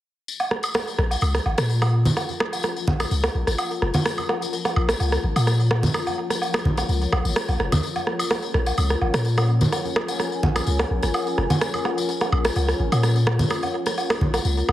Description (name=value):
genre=minimal techno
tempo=127 BPM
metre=4/4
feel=straight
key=Bb minor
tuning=A4 = 439 Hz
part: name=tambourine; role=percussion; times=0.3-14.7 s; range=none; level=-33 LUFS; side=left 6 dB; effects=none
part: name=deep dark ambient pad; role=texture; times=1.2-14.7 s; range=F4 to Bb5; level=-31 LUFS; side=left 3 dB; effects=chorus, built-in reverb
part: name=swarming drone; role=texture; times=1.1-14.7 s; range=F3 to F4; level=-35 LUFS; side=left 4 dB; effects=built-in reverb
part: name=electronic woodblock, rim click and congas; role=percussion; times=0.4-14.7 s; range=none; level=-23 LUFS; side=right 1 dB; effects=digital delay
part: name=punchy sub bass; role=bass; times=1.0-14.7 s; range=F1 to Bb2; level=-21 LUFS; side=equal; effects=none
room=moderate plate reverb, RT60 1.7 s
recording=heavily compressed radio sound, multiband compression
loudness=-20 LUFS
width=side -14 dB against mid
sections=0.3-14.7 A section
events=none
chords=0.3 Bbm